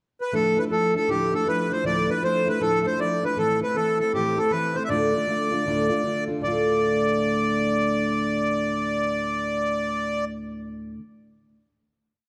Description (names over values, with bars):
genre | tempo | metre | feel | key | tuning
celtic folk, Celtic hornpipe | 157 BPM | 4/4 | swing 64% on 8ths | D dorian | A4 = 438 Hz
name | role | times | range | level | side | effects
accordion | melody | 0.2-10.2 s | G4 to E5 | -26 LUFS | equal | none
fingerpicked plugged-in steel-string acoustic guitar | accompaniment | 0.3-11.0 s | D2 to F4 | -28 LUFS | equal | none
room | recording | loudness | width
moderate recital hall reverb, RT60 1.8 s | none | -24 LUFS | mono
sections
0.0-0.3 pickup bar; 0.3-6.4 A section; 6.4-9.5 final chord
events
none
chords
0.3 Dmadd9; 3.4 Am; 4.9 Dm